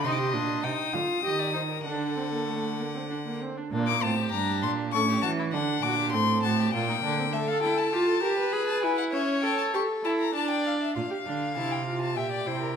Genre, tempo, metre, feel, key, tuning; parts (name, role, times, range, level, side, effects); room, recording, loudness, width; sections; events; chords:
classical, baroque-style fugue for string quartet; 99 BPM; 3/4; straight; G minor; A4 = 441 Hz
rich violin; melody; 0.0-12.8 s; E5 to Eb6; -30 LUFS; left 9 dB
rich violin; second line; 0.0-12.8 s; C4 to G5; -32 LUFS; left 2 dB
warm viola; accompaniment; 0.0-12.8 s; A3 to A4; -30 LUFS; right 2 dB
rich cello; bass; 0.0-7.3, 11.0-12.8 s; G2 to E3; -30 LUFS; right 5 dB
wet recital hall reverb, RT60 1.4 s; -25 LUFS; side -7 dB against mid
0.0-3.7 A section; 3.7-11.0 B section; 11.0-12.8 A section
0.0 Ebmaj13/Bb; 1.9 D; 3.7 Gm; 4.9 A7; 5.5 D7; 6.7 Gm/Bb; 7.3 G7sus2; 8.5 E/G#; 9.1 A/C#; 10.3 D5; 11.0 Bb (rootless); 12.2 Edim/Bb